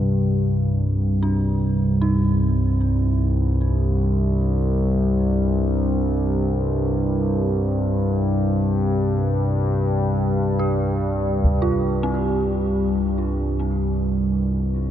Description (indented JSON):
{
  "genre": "dark ambient drone",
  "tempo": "free time",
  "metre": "none",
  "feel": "none",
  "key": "C minor",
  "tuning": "A4 = 440 Hz",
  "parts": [
    { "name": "dark detuned synth bell", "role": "arpeggios", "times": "0.0-14.9 s", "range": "C4 to G4", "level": "-31 LUFS", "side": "right 1 dB", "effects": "chorus, tape echo" },
    { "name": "analog drone", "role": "drone", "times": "0.0-14.9 s", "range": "C2 to G2", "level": "-19 LUFS", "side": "equal", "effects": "chorus" },
    { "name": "taiko ensemble", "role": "percussion", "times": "11.4-11.6 s", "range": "none", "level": "-20 LUFS", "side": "equal", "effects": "low-pass filter on perc" }
  ],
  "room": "moderate huge ambient reverb, RT60 8.1 s",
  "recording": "dark, warm production",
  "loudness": "-19 LUFS",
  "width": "side -10 dB against mid",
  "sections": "0.0-14.9 A section",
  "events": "fade-in on synth bell 0.0-14.9",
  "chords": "0.0 Cm",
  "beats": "free time"
}